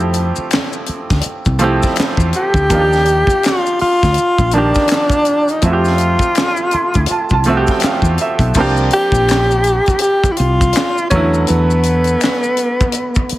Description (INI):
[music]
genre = R&B, neo-soul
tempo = 82 BPM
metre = 4/4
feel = swing 60% on 16ths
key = F major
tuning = A4 = 440 Hz
[part]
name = breathy tenor saxophone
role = melody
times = 0.0-13.4 s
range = B3 to G4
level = -15 LUFS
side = equal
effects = none
[part]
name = bright upright piano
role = accompaniment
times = 0.0-13.4 s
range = D3 to C6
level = -19 LUFS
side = right 2 dB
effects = none
[part]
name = woody fretless electric bass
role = bass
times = 0.0-13.3 s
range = Bb1 to F2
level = -16 LUFS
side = equal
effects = none
[part]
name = maracas and finger snaps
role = percussion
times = 0.0-13.3 s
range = none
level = -27 LUFS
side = left 8 dB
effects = none
[part]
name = tight funk drum kit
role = drums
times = 0.1-13.4 s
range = crash cymbal, handclaps, hi-hat, kick drum, snare drum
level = -18 LUFS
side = equal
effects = none
[sound]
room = light reverb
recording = heavily compressed radio sound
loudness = -12 LUFS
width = side -16 dB against mid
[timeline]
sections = 0.0-8.6 A section; 8.6-13.4 B section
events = upright piano fill 6.4-8.6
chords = 0.0 Fmaj9; 2.7 Ebmaj9; 5.6 Fmaj9; 8.6 C9sus4; 11.1 E9sus4